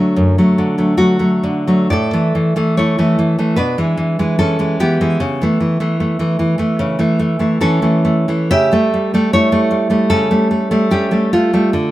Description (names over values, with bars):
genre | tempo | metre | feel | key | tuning
romantic piece for solo classical guitar | 73 BPM | 4/4 | uneven beats, rubato | unclear | A4 = 440 Hz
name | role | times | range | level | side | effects
nylon-string guitar | solo | 0.0-11.9 s | F#2 to E5 | -12 LUFS | equal | none
room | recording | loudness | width
light reverb | band playing live in one room | -12 LUFS | side -15 dB against mid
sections
0.0-11.9 A section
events
none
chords
0.0 D/F#; 1.9 A; 3.6 E7/B; 5.2 A/C#; 8.5 A7/C#